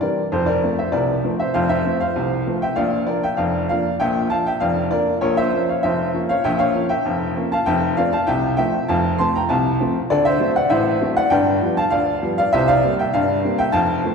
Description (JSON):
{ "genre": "ragtime piano", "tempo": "98 BPM", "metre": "2/4", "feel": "straight", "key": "F major", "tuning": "A4 = 438 Hz", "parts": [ { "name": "clear upright piano", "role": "solo", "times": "0.0-14.1 s", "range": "F1 to C6", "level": "-17 LUFS", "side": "equal", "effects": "none" } ], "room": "wet concert hall reverb, RT60 2.1 s", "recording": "recorded in a church or concert hall", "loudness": "-17 LUFS", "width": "side -5 dB against mid", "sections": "0.3-14.1 A section", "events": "none", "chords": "0.3 F; 2.8 Bb; 5.2 Bbm; 7.7 F; 10.1 D7; 11.3 G7; 12.5 C7", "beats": "| 0.32 0.93 | 1.55 2.16 | 2.77 3.38 | 3.99 4.60 | 5.22 5.83 | 6.44 7.05 | 7.66 8.27 | 8.88 9.49 | 10.10 10.71 | 11.32 11.93 | 12.54 13.14 | 13.76" }